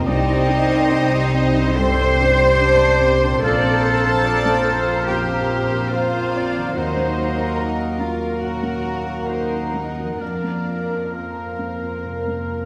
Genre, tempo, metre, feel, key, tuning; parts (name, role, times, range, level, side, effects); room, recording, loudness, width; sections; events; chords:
cinematic; 71 BPM; 4/4; uneven beats, rubato; Bb major; A4 = 440 Hz
warm studio violin section; melody; 0.0-12.7 s; Bb4 to C5; -30 LUFS; equal
mellow flute section; second line; 0.0-12.7 s; G5 to Bb5; -33 LUFS; equal
rich studio violin section; second line; 0.0-12.7 s; C5 to C6; -34 LUFS; equal
warm cor anglais; second line; 0.0-12.7 s; D5 to Gb5; -32 LUFS; equal
dark studio viola section; accompaniment; 0.0-12.7 s; G4 to D5; -32 LUFS; equal
felt-muted upright piano; accompaniment; 0.0-12.7 s; Bb1 to C5; -30 LUFS; equal
clear French horn section; sustained chords; 0.0-12.7 s; F3 to C4; -31 LUFS; equal
concert harp; arpeggios; 0.0-12.7 s; Bb2 to C5; -33 LUFS; equal
warm studio cello section; bass; 0.0-12.7 s; C4 to C5; -24 LUFS; equal
warm studio double bass section; bass; 0.0-12.7 s; Bb1 to F2; -28 LUFS; equal
warm clarinet; second line; 0.1-12.7 s; Bb4 to C5; -33 LUFS; equal
wet scoring stage reverb, RT60 1.7 s; -19 LUFS; mono
0.0-12.7 A section
0.1 Cmadd9; 3.4 Bbsus2; 6.8 Ebm; 10.2 Fsus4